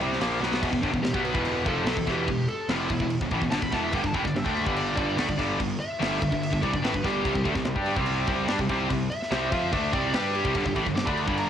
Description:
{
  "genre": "heavy metal",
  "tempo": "145 BPM",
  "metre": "4/4",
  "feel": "straight",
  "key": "E phrygian",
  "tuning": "A4 = 440 Hz",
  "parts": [
    { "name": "distorted electric guitar", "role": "riff", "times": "0.0-11.5 s", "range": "E2 to G4", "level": "-30 LUFS", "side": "right 8 dB", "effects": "overdrive, cassette tape" },
    { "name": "scooped high-gain guitar", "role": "riff", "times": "0.0-11.5 s", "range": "E2 to G4", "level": "-34 LUFS", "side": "equal", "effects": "distortion, cassette tape" },
    { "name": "tight distorted guitar", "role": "riff", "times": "0.0-11.5 s", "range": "E2 to G4", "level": "-29 LUFS", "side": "left 8 dB", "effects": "distortion, cassette tape" },
    { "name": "fuzz picked electric bass", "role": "bass", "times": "0.0-11.5 s", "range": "E1 to G2", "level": "-33 LUFS", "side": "equal", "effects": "overdrive" },
    { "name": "tight metal drum kit", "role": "drums", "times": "0.0-11.5 s", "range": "crash cymbal, kick drum, snare drum", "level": "-31 LUFS", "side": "equal", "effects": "cassette tape" },
    { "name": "high-gain lead guitar", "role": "melody", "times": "1.0-11.5 s", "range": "E4 to D6", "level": "-32 LUFS", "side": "equal", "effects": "distortion, cassette tape, analog delay" }
  ],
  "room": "studio ambience",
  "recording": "home recording on cassette",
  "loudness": "-24 LUFS",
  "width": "side -9 dB against mid",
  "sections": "0.6-11.5 A section",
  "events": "drum fill 0.4; lead electric guitar solo 0.6-11.5",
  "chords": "0.0 Em (rootless); 0.6 Em; 3.9 G5; 7.2 C5; 10.6 G5"
}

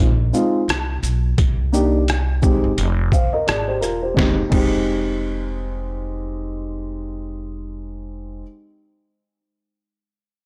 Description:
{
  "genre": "hip hop, jazz-hop",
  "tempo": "86 BPM",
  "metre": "4/4",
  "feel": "swing 60% on 16ths",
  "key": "F dorian",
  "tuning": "A4 = 438 Hz",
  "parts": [
    { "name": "dark upright piano", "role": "accompaniment", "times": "0.0-8.4 s", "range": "Ab3 to F5", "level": "-24 LUFS", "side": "equal", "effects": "none" },
    { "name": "upright bass", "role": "bass", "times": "0.0-8.4 s", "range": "E1 to C2", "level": "-25 LUFS", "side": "equal", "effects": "none" },
    { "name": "trip hop sampler-style drum kit", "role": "drums", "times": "0.3-4.7 s", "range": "crash cymbal, hi-hat, kick drum, rim click, shaker, snare drum", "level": "-22 LUFS", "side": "equal", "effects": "none" }
  ],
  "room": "small room reverb",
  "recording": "dry, gritty hardware recording",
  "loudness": "-20 LUFS",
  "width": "mono",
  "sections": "0.0-4.2 A section; 4.2-7.0 B section",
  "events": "none",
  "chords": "0.0 Bb9sus4; 1.4 Cm9; 2.8 Fm; 4.2 Fm9"
}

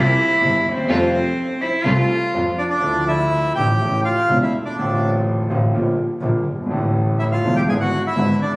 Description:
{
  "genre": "tango",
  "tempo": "124 BPM",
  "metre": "4/4",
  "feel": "rubato",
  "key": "D minor",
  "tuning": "A4 = 439 Hz",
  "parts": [
    { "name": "rich cello", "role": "second line", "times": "0.0-2.6 s", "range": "C4 to F4", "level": "-18 LUFS", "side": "equal", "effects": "none" },
    { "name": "warm concert grand piano", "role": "accompaniment", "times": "0.0-8.4 s", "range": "E1 to G4", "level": "-21 LUFS", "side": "equal", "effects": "none" },
    { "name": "muted studio string section", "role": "stabs", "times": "0.0-2.5 s", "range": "G3 to F4", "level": "-28 LUFS", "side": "equal", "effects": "none" },
    { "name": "warm double bass", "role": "bass", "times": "0.0-8.4 s", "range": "E1 to F2", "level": "-22 LUFS", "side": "equal", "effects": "none" },
    { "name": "bandoneon", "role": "melody", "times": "2.6-8.5 s", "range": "D4 to G#5", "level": "-20 LUFS", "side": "equal", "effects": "none" }
  ],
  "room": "moderate scoring stage reverb, RT60 2.0 s",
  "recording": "recorded on a phone in the room, studio ambience",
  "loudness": "-16 LUFS",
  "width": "side -23 dB against mid",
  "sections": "0.0-2.8 A section; 2.8-8.6 B section",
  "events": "cello solo 0.0-2.8",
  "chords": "0.0 C7; 0.9 Fadd9; 2.8 Dmadd9; 3.8 A; 4.8 Dm7/A; 5.7 Gm/Bb; 6.7 Asus4; 7.7 E7/G#"
}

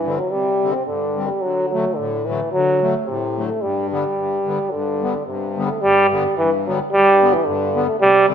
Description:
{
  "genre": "alpine folk",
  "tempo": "110 BPM",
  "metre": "2/4",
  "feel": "swing 53% on 8ths",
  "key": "G major",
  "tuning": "A4 = 441 Hz",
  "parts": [
    { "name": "clear euphonium", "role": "melody", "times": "0.0-8.3 s", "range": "C3 to C4", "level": "-17 LUFS", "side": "right 1 dB", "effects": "none" },
    { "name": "accordion", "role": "accompaniment", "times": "0.0-8.3 s", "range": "G2 to C4", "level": "-24 LUFS", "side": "left 5 dB", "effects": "light tremolo tuning" }
  ],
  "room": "moderate recital hall reverb, RT60 1.3 s",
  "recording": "dark, warm production, nothing above 10.5 kHz",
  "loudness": "-16 LUFS",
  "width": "side -8 dB against mid",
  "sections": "0.0-5.8 A section; 5.8-8.3 A section",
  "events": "none",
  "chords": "0.0 Csus2; 1.4 D; 3.6 G"
}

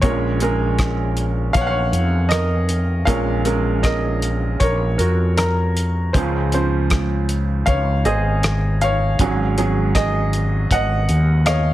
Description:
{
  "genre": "acoustic folk-pop ballad",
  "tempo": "79 BPM",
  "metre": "4/4",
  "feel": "straight",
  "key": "unclear",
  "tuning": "A4 = 438 Hz",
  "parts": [
    { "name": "bright upright piano", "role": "melody", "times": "0.0-11.7 s", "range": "Ab1 to Gb5", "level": "-21 LUFS", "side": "right 2 dB", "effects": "none" },
    { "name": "mellow fretless electric bass", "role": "bass", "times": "0.0-11.7 s", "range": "Ab1 to F2", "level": "-19 LUFS", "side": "equal", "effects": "none" },
    { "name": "cloth-damped thuddy drum kit", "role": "drums", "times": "0.0-11.6 s", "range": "hi-hat, kick drum, rim click", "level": "-21 LUFS", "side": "equal", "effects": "none" },
    { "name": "felt-muted upright piano", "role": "arpeggios", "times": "5.4-11.7 s", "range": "Ab4 to Eb5", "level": "-25 LUFS", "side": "equal", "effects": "none" }
  ],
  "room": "light reverb",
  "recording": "heavily compressed radio sound",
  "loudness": "-16 LUFS",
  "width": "side -14 dB against mid",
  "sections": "0.0-11.7 A section",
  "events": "none",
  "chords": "0.0 Bbm7; 6.1 Dbmaj7; 9.2 Ab7sus4"
}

